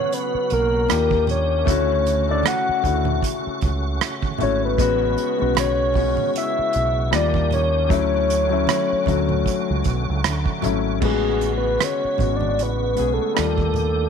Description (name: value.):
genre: R&B, neo-soul.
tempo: 77 BPM.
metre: 4/4.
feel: swing 56% on 16ths.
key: A major.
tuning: A4 = 440 Hz.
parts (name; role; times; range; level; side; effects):
soft octave-layered synth lead; melody; 0.0-14.1 s; G#4 to F#5; -22 LUFS; left 1 dB; chorus.
dark upright piano; accompaniment; 0.0-14.1 s; F#3 to C#5; -25 LUFS; left 12 dB; none.
tonewheel organ; sustained chords; 0.0-14.1 s; C#3 to G4; -31 LUFS; right 1 dB; chorus vibrato, fast rotary speaker.
unplugged drum kit; drums; 0.1-14.0 s; crash cymbal, hi-hat, kick drum, rim click; -25 LUFS; right 5 dB; none.
deep dub fingered electric bass; bass; 0.3-14.1 s; G#1 to D#2; -24 LUFS; right 1 dB; none.
congas; percussion; 0.5-13.9 s; none; -32 LUFS; right 11 dB; none.
room: light reverb.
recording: 1960s-style stereo with parts hard left and right.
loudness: -18 LUFS.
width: side -7 dB against mid.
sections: 0.0-11.0 A section; 11.0-14.1 B section.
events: soft synth lead solo 11.0-14.1.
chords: 0.0 Amaj13; 0.9 D#maj7; 1.7 Dmaj7; 4.8 Amaj13; 7.1 D#maj7; 7.9 Dmaj7; 11.0 Amaj13; 13.4 D#maj7.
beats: 0.11 0.89 | 1.67 2.45 3.23 4.01 | 4.79 5.57 6.34 7.12 | 7.90 8.68 9.46 10.24 | 11.02 11.80 12.58 13.36.